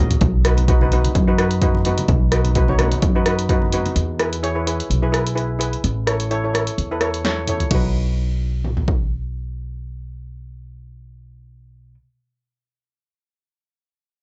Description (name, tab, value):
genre	calypso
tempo	128 BPM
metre	4/4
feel	swing 54% on 16ths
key	B major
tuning	A4 = 440 Hz
part	steel pan	accompaniment	0.0-12.0 s	D#4 to D#5	-26 LUFS	equal	none
part	upright bass	bass	0.0-11.9 s	A1 to F#2	-23 LUFS	equal	none
part	punchy analog drum machine	drums	0.1-9.0 s	hi-hat, kick drum, ride cymbal, rim click, snare drum, toms	-23 LUFS	equal	none
part	congas	percussion	0.6-4.0 s	none	-32 LUFS	equal	none
room	little or no reverb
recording	nothing above 7.9 kHz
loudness	-19 LUFS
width	mono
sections	0.2-7.7 A section; 7.7-11.5 B section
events	drum fill 0.0, 7.2-7.7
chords	0.2 B; 4.0 E; 5.8 A; 7.7 B